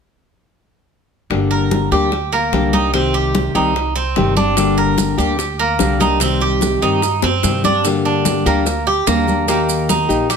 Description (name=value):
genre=latin, Cuban son and guajira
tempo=147 BPM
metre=4/4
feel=straight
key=G minor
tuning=A4 = 440 Hz
part: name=nylon-string guitar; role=accompaniment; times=1.3-10.3 s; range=C3 to G4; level=-18 LUFS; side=left 4 dB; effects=none
part: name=upright bass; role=bass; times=1.3-10.4 s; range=G1 to G2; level=-22 LUFS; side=right 2 dB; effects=none
part: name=bongos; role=percussion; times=1.3-10.4 s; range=none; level=-25 LUFS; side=left 5 dB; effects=none
part: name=congas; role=percussion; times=1.3-10.4 s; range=none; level=-24 LUFS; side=left 2 dB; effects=none
part: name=Cuban tres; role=arpeggios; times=1.5-10.4 s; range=Bb3 to Bb4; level=-18 LUFS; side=right 4 dB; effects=none
part: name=maracas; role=percussion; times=4.6-10.4 s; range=none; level=-26 LUFS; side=right 8 dB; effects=none
room=moderate studio reverb, RT60 0.9 s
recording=none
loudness=-14 LUFS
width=side -6 dB against mid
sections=1.3-7.8 A section; 7.8-10.4 B section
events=drum fill 7.2-7.8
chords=1.3 Gm; 2.9 Cm; 4.6 Gm; 6.2 Cm; 7.8 Gm; 9.5 Eb